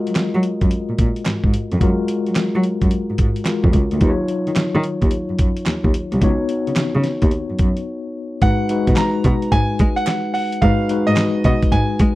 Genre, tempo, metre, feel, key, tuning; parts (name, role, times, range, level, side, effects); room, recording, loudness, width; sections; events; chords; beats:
R&B, new jack swing; 109 BPM; 4/4; swing 66% on 16ths; A4 = 440 Hz
mellow tine electric piano; accompaniment; 0.0-12.2 s; F#3 to C#5; -21 LUFS; left 3 dB; fast stereo tremolo
dark cello; bass; 0.1-12.1 s; B#1 to G#3; -20 LUFS; equal
dusty soul sampler-style drum kit; drums; 0.1-12.2 s; handclaps, hi-hat, kick drum, snare drum; -19 LUFS; equal
group handclap; percussion; 0.2-11.3 s; -34 LUFS; right 13 dB
clear concert grand piano; melody; 8.4-12.2 s; D#5 to A#5; -22 LUFS; right 2 dB; slapback echo
small room ambience; dry, close 1970s-style studio recording; -16 LUFS; side -17 dB against mid
0.0-8.4 A section; 8.4-12.2 B section
break 7.9-8.4
0.0 F#maj9; 4.0 D#m9; 6.2 C#9sus4; 8.4 G#m7
0.16 0.71 1.26 | 1.81 2.37 2.92 3.47 | 4.02 4.57 5.12 5.67 | 6.22 6.77 7.32 7.87 | 8.42 8.97 9.52 10.07 | 10.62 11.17 11.72